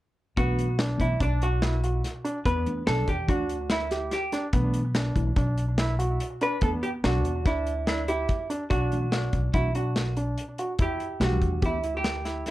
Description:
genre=progressive instrumental, band music in an uneven meter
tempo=144 BPM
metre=5/4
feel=straight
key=unclear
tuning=A4 = 435 Hz
part: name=archtop guitar, miked and amplified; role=melody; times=0.4-12.5 s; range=D4 to B4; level=-29 LUFS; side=right 2 dB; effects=none
part: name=mellow tine electric piano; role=accompaniment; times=0.4-11.8 s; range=E3 to E4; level=-33 LUFS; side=left 1 dB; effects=medium stereo tremolo
part: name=warm concert grand piano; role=arpeggios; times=0.4-12.5 s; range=G3 to G4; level=-32 LUFS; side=right 1 dB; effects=digital delay
part: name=upright bass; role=bass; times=0.4-12.4 s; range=B1 to E2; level=-28 LUFS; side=equal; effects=none
part: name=modern studio drum kit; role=drums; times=0.4-12.5 s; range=hi-hat, kick drum, snare drum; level=-28 LUFS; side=equal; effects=none
room=light reverb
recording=worn, warbling old tape, cassette tape, warbly pitch drift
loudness=-24 LUFS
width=side -16 dB against mid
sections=0.4-8.7 A section; 8.7-12.5 B section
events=none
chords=0.4 Bm; 2.5 Em7; 4.5 Bm; 6.6 Em7; 8.7 Bm; 10.8 Em7

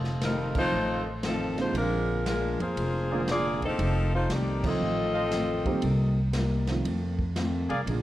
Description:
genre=jazz, big band swing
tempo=118 BPM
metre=4/4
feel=swing 67% on 8ths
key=F mixolydian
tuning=A4 = 440 Hz
part: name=fingerpicked steel-string acoustic guitar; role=accompaniment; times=0.0-8.0 s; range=F2 to Eb4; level=-35 LUFS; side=left 2 dB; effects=none
part: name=warm trumpet section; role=stabs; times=0.0-7.8 s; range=Ab4 to F5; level=-36 LUFS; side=right 1 dB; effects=none
part: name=upright bass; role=bass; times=0.0-8.0 s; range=F1 to G2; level=-29 LUFS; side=equal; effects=none
part: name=swinging big-band drum kit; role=drums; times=0.0-8.0 s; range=crash cymbal, hi-hat, kick drum, ride cymbal, snare drum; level=-36 LUFS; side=equal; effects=none
part: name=bright saxophone section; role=melody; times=0.2-6.2 s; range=F3 to Eb5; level=-29 LUFS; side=left 2 dB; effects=none
part: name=warm grand piano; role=accompaniment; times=0.5-8.0 s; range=D3 to G4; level=-34 LUFS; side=right 4 dB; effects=none
room=moderate recital hall reverb, RT60 1.5 s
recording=worn, warbling old tape, cassette tape, warbly pitch drift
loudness=-25 LUFS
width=side -14 dB against mid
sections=0.0-8.0 A section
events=band accent 0.5, 4.5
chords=0.0 F7; 1.7 Bb7; 3.8 F7; 5.8 Cm7; 6.8 F7

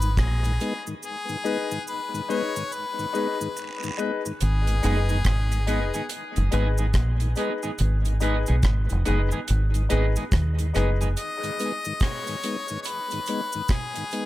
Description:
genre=dub reggae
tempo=71 BPM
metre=4/4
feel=swing 63% on 16ths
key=G# minor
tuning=A4 = 440 Hz
part: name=bright harmonica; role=melody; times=0.0-6.1, 11.2-14.3 s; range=G#4 to D#5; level=-31 LUFS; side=left 3 dB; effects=dub echo
part: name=mellow tonewheel organ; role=accompaniment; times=0.0-14.3 s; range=G#2 to D#4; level=-33 LUFS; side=left 2 dB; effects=slow rotary speaker, dub echo
part: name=deep dub fingered electric bass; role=bass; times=0.0-11.1 s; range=E#1 to D#2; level=-22 LUFS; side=equal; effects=none
part: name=cabasa and guiro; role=percussion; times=0.0-14.3 s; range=none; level=-39 LUFS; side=right 3 dB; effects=none
part: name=deep reggae drum kit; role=drums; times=0.2-14.3 s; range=hi-hat, kick drum, rim click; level=-27 LUFS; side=equal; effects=none
part: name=warm concert grand piano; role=stabs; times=1.4-11.0 s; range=D#4 to B4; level=-32 LUFS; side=left 6 dB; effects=dub echo
part: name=clean electric guitar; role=accompaniment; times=4.8-11.1 s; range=B3 to G#4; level=-33 LUFS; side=right 4 dB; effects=wide subtle chorus, dub echo
room=light reverb, studio reverb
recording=none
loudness=-22 LUFS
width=side -16 dB against mid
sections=0.0-14.3 A section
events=break 0.0-4.4, 11.2-14.3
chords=0.0 G#m

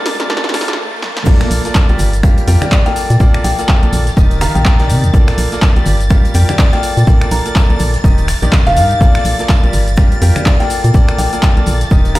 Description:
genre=piano house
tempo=124 BPM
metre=4/4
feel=swing 59% on 16ths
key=Bb major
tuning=A4 = 440 Hz
part: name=string machine, violins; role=sustained chords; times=0.0-12.2 s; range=A6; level=-26 LUFS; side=right 1 dB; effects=ensemble chorus, sidechain pumping
part: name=clear baby grand piano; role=riff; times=0.0-12.2 s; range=Eb3 to G5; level=-20 LUFS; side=right 1 dB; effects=sidechain pumping, dub echo
part: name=riser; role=sound effects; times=0.0-1.3 s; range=none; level=-25 LUFS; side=right 1 dB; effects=none
part: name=punchy analog drum machine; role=drums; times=0.1-12.2 s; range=crash cymbal, finger snaps, handclaps, hi-hat, shaker, snare drum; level=-21 LUFS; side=equal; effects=overdrive
part: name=organ-like FM bass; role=bass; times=1.3-12.2 s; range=Eb1 to C3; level=-13 LUFS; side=equal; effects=tube saturation, sidechain pumping
part: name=crisp fusion drum kit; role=drums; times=1.3-12.2 s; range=hi-hat, shaker, snare drum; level=-32 LUFS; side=right 1 dB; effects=none
part: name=electronic kick drum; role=drums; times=1.3-12.0 s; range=none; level=-10 LUFS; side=equal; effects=overdrive
part: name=congas and tambourine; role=percussion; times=1.3-12.2 s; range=none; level=-26 LUFS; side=left 2 dB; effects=none
part: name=kalimba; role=melody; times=2.6-12.2 s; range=D5 to Bb5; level=-20 LUFS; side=left 2 dB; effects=dub echo
room=small room reverb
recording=played on a big sound system in a bare room, stone room reverb, high-pass filter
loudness=-10 LUFS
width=side -17 dB against mid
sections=0.0-1.3 A section; 1.3-12.2 B section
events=build-up 0.0-1.3; drum fill 0.0-0.8, 1.0; riser 0.0-1.3; break 0.8-1.3; drop 1.3-12.2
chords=0.3 Bbmaj7; 2.0 Gm7; 3.0 Bbmaj7; 4.2 Ebmaj7; 5.1 Bbmaj7; 5.9 Gm7; 6.8 Bbmaj7; 8.0 Ebmaj7; 9.0 Bbmaj7; 9.7 Gm7; 10.7 Bbmaj7

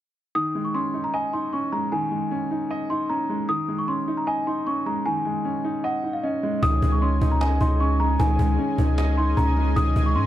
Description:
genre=hip hop, trap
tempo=153 BPM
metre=4/4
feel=half-time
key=unclear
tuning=A4 = 442 Hz
part: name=worn celesta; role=melody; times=0.4-10.3 s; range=Eb5 to Eb6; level=-26 LUFS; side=left 1 dB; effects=low-pass filter, tape echo
part: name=dark grand piano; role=accompaniment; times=0.4-10.3 s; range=Eb3 to Eb5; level=-26 LUFS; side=right 1 dB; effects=low-pass filter
part: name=warm analog pad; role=sustained chords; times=6.6-10.3 s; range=Db4 to Ab5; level=-32 LUFS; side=left 3 dB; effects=chorus, tremolo
part: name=long sustained 808-style bass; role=bass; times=6.6-10.3 s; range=Db2 to Ab2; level=-21 LUFS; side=equal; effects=none
part: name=cajon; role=drums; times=6.6-10.2 s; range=none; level=-30 LUFS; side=equal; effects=none
room=studio reverb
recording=dark, warm production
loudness=-21 LUFS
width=side -12 dB against mid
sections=0.4-6.6 A section; 6.6-10.3 B section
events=none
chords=0.4 Dbsus2

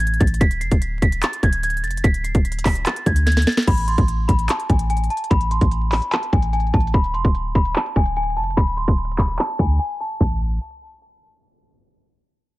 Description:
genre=hip hop, trap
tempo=147 BPM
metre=4/4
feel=half-time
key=unclear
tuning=A4 = 439 Hz
part: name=celesta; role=melody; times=0.0-10.4 s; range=G#5 to C7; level=-24 LUFS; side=equal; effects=low-pass filter, analog delay
part: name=clean 808-style bass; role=bass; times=0.0-10.6 s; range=D1 to D2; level=-21 LUFS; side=equal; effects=none
part: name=trap drum kit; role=drums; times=0.0-10.3 s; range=crash cymbal, handclaps, hi-hat, kick drum, snare drum, toms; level=-19 LUFS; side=equal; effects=none
room=little or no reverb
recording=echo-heavy mix, vinyl crackle, low-pass filter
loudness=-17 LUFS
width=side -18 dB against mid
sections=0.0-3.7 A section; 3.7-10.2 B section; 10.2-11.8 C section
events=drum fill 3.3-3.7; filter sweep 3.7-10.2; break 9.8-10.2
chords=0.4 D5; 3.7 Am; 6.9 D5; 10.2 N.C.

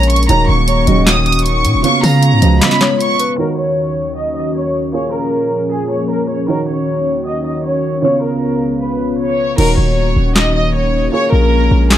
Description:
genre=hip hop, trap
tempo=155 BPM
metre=4/4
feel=half-time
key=Eb minor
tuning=A4 = 441 Hz
part: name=warm studio violin section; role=melody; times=0.0-12.0 s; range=Ab4 to Eb6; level=-17 LUFS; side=equal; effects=tape echo
part: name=hollow clarinet-like synth lead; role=second line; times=0.0-3.4 s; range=Cb5 to F5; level=-23 LUFS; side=left 3 dB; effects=chorus, phaser, tape echo
part: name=dark baby grand piano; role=accompaniment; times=0.0-12.0 s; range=Db3 to Db5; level=-20 LUFS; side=right 4 dB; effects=none
part: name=dark analog pad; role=sustained chords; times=0.0-12.0 s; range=Db2 to Ab4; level=-20 LUFS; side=left 3 dB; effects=chorus
part: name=hard-hitting 808-style bass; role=bass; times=0.0-2.6, 9.6-12.0 s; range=Eb1 to Db3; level=-13 LUFS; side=equal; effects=none
part: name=trap drum kit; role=drums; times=0.0-3.3, 9.6-12.0 s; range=crash cymbal, handclaps, hi-hat, snare drum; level=-16 LUFS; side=equal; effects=none
part: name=dark brass ensemble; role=stabs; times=0.9-2.7 s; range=Db2 to Gb3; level=-17 LUFS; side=right 6 dB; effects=none
room=light reverb, studio ambience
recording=dark, warm production, low-pass filter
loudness=-12 LUFS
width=side -11 dB against mid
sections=0.0-3.4 A section; 3.4-9.6 B section; 9.6-12.0 C section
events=break 2.6-3.4; filter sweep 3.4-9.6; hi-hats muted 9.6-12.0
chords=0.3 Ebm7; 1.8 Db7; 3.4 Ebm7; 4.9 Bbm7; 6.5 Ebm7; 8.0 Db7; 9.6 Ebm7; 11.1 Bbm7

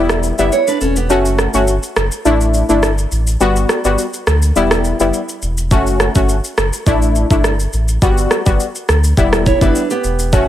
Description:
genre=dancehall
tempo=104 BPM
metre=4/4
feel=straight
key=unclear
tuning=A4 = 440 Hz
part: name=synth brass stab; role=accompaniment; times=0.0-10.5 s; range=G3 to F#4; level=-16 LUFS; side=left 2 dB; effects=chorus, sidechain pumping
part: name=sub bass with octave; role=bass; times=0.0-10.5 s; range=E1 to D2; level=-16 LUFS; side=equal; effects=none
part: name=island pop drum kit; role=drums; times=0.1-10.5 s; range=kick drum, rim click, shaker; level=-17 LUFS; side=equal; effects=overdrive
part: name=nylon-string guitar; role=arpeggios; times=0.4-1.2, 9.5-10.3 s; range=B3 to E5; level=-16 LUFS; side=right 4 dB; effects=none
room=little or no reverb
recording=none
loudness=-12 LUFS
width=side -12 dB against mid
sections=0.0-10.5 A section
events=break 0.0-5.7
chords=0.0 Em; 1.1 F#m; 2.3 Asus4; 3.4 Gmaj7; 4.6 Em; 5.7 F#m; 6.9 Asus4; 8.0 Gmaj7; 9.2 Em

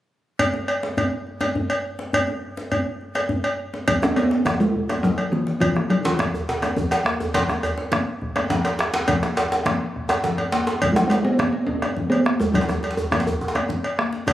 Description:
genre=west african traditional, West African drum ensemble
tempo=138 BPM (dotted quarters)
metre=12/8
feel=straight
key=unclear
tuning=A4 = 440 Hz
part: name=cowbell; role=percussion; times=0.4-14.3 s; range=none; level=-26 LUFS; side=equal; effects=none
part: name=djembe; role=percussion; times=0.4-14.3 s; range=none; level=-28 LUFS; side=left 2 dB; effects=none
part: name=bombo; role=percussion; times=3.9-14.3 s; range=none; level=-28 LUFS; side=equal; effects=none
part: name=congas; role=percussion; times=3.9-14.3 s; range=none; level=-29 LUFS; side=equal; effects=none
part: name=talking drum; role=melody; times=4.0-6.4, 10.9-13.7 s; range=E3 to C#4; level=-21 LUFS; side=equal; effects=none
part: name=djembe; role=percussion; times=4.0-14.3 s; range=none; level=-24 LUFS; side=right 1 dB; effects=none
room=moderate plate reverb, RT60 2.3 s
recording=recorded on a phone in the room, studio ambience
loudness=-20 LUFS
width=side -13 dB against mid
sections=0.4-3.9 A section; 3.9-14.3 B section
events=drum fill 10.1-10.8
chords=none

